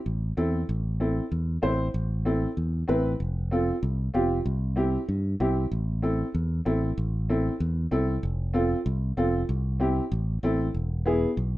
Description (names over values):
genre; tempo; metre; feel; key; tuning
latin, cumbia; 191 BPM; 4/4; straight; A minor; A4 = 438 Hz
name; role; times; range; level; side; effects
fingered electric bass; bass; 0.1-11.6 s; E1 to G2; -27 LUFS; equal; none
warm upright piano; accompaniment; 0.4-11.3 s; B3 to C5; -27 LUFS; equal; plate reverb
room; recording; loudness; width
moderate studio ambience, RT60 0.5 s; rough home demo mix; -24 LUFS; side -16 dB against mid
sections
0.7-10.7 A section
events
none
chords
0.1 Am; 3.2 F; 4.5 C; 5.7 Am; 8.2 F; 9.5 C; 10.1 Am; 10.7 E